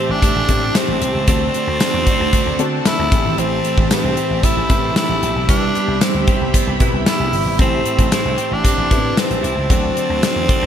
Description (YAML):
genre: 1980s-style pop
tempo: 114 BPM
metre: 4/4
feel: straight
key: A dorian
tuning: A4 = 439 Hz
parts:
  - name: raspy tenor saxophone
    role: melody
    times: 0.0-10.7 s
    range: C4 to E4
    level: -20 LUFS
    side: equal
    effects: ping-pong delay
  - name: cranked stack guitar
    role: accompaniment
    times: 0.0-10.7 s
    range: A2 to D4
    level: -30 LUFS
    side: right 5 dB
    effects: none
  - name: warm grand piano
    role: accompaniment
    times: 0.0-10.7 s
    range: A2 to B4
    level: -26 LUFS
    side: left 4 dB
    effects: analog chorus
  - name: string machine, violas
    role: sustained chords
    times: 0.0-10.7 s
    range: F#4 to B5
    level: -26 LUFS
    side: equal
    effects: ensemble chorus
  - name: clean electric guitar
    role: riff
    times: 0.0-10.7 s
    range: E3 to A4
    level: -25 LUFS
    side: right 6 dB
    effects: analog chorus, ping-pong delay
  - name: vintage slap bass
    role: bass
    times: 0.1-10.7 s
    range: G1 to D3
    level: -23 LUFS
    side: equal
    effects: none
  - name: gated 80s drum kit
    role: drums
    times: 0.2-10.6 s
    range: hi-hat, kick drum, snare drum, tambourine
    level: -17 LUFS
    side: equal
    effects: none
room: moderate lush hall reverb, RT60 2.0 s, studio ambience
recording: bright 1980s-style digital production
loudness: -14 LUFS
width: side -9 dB against mid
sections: 0.0-10.7 A section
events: none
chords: 0.0 Am7; 1.3 D7; 3.1 Am7; 5.5 Cmaj7; 7.6 Am7; 9.7 D7